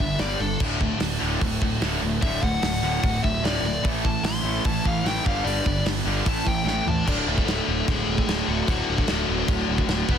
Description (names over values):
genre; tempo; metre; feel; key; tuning
punk rock; 149 BPM; 4/4; straight; D major, D lydian from 7.1 s; A4 = 440 Hz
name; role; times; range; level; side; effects
biting lead guitar; melody; 0.0-10.2 s; F#3 to C6; -28 LUFS; left 3 dB; overdrive
distorted electric guitar; riff; 0.0-10.2 s; D2 to A4; -29 LUFS; right 4 dB; overdrive
overdriven electric guitar; riff; 0.0-10.2 s; D2 to A3; -29 LUFS; left 13 dB; none
tight distorted guitar; riff; 0.0-7.0 s; D2 to A3; -30 LUFS; right 12 dB; distortion
fuzz picked electric bass; bass; 0.0-10.2 s; D1 to A1; -28 LUFS; equal; overdrive
loose indie drum kit; drums; 0.0-10.2 s; crash cymbal, hi-hat, kick drum, snare drum, toms; -27 LUFS; equal; none
room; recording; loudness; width
little or no reverb; dense, heavily limited modern master; -21 LUFS; side -8 dB against mid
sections
0.0-7.1 A section; 7.1-10.2 B section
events
lead electric guitar solo 0.0-7.1; drum fill 6.7-7.1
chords
0.0 G; 0.6 D; 3.8 A; 5.2 G; 6.3 A; 7.1 D